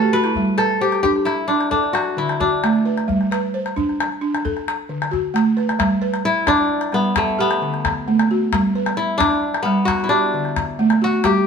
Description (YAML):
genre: west african traditional, West African string and xylophone music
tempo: 88 BPM (dotted quarters)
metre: 12/8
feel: straight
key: G major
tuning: A4 = 440 Hz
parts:
  - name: kora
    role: melody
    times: 0.0-11.5 s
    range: A3 to B4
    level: -19 LUFS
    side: left 2 dB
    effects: none
  - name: balafon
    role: arpeggios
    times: 0.0-11.5 s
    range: D3 to E5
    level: -20 LUFS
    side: right 2 dB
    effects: none
  - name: calabash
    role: percussion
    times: 0.0-11.3 s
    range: none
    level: -25 LUFS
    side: left 4 dB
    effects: none
room: moderate studio reverb, RT60 0.9 s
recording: band playing live in one room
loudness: -16 LUFS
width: side -6 dB against mid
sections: 0.0-5.8 A section; 5.8-11.5 B section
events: balafon fill 0.0-0.4; kora solo 5.8-11.5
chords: 0.4 G; 1.7 D; 3.1 G; 4.4 D; 5.8 G; 7.2 D; 8.5 G; 9.9 D